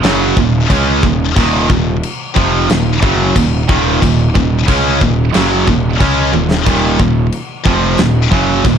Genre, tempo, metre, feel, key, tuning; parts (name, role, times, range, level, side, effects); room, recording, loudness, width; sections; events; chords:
heavy metal; 90 BPM; 4/4; straight; Eb minor; A4 = 440 Hz
distorted electric guitar; riff; 0.0-8.8 s; Eb2 to Db4; -20 LUFS; left 1 dB; distortion
heavy high-gain guitar; riff; 0.0-8.8 s; Eb2 to Db4; -18 LUFS; left 10 dB; distortion
heavy high-gain guitar; riff; 0.0-8.8 s; Eb2 to Db4; -16 LUFS; right 9 dB; distortion
fuzz picked electric bass; bass; 0.0-8.8 s; Eb1 to Db2; -17 LUFS; equal; overdrive
big rock drum kit; drums; 0.0-8.8 s; crash cymbal, kick drum, snare drum, toms; -16 LUFS; equal
small room ambience; dark, warm production; -10 LUFS; side -8 dB against mid
0.0-8.8 A section
drum fill 6.3-6.7
0.0 Ebm